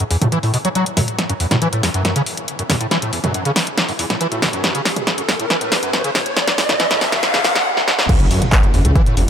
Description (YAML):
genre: driving peak-time techno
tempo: 139 BPM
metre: 4/4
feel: straight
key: F# minor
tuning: A4 = 444 Hz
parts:
  - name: overdriven acid bass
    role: riff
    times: 0.0-9.2 s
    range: E2 to F#3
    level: -20 LUFS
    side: equal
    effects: ensemble chorus, sidechain pumping, ping-pong delay
  - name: punchy analog drum machine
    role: drums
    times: 0.0-9.3 s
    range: crash cymbal, handclaps, hi-hat, snare drum, toms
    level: -18 LUFS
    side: equal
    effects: sidechain pumping on hats, sidechain pumping on toms, sidechain pumping on cymbals
  - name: riser, noise sweep and impact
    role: sound effects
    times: 3.1-9.3 s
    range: none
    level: -22 LUFS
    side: equal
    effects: none
  - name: electronic kick drum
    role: drums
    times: 8.1-9.0 s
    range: none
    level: -15 LUFS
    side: equal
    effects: none
  - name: detuned saw bass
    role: bass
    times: 8.2-9.3 s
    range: F#1 to F#2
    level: -16 LUFS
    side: equal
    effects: sidechain pumping
room: moderate huge ambient reverb, RT60 7.2 s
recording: high-pass filter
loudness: -15 LUFS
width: side -8 dB against mid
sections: 0.0-8.1 A section; 8.1-9.3 B section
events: build-up 0.0-8.1; filter sweep on acid bass 0.0-8.1; filter sweep 0.0-8.1; drum fill 1.2-7.7, 7.8-8.1; riser 3.1-7.7; noise sweep 6.4-8.1; drop 8.1-9.3; impact 8.1-9.3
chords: 0.0 F#m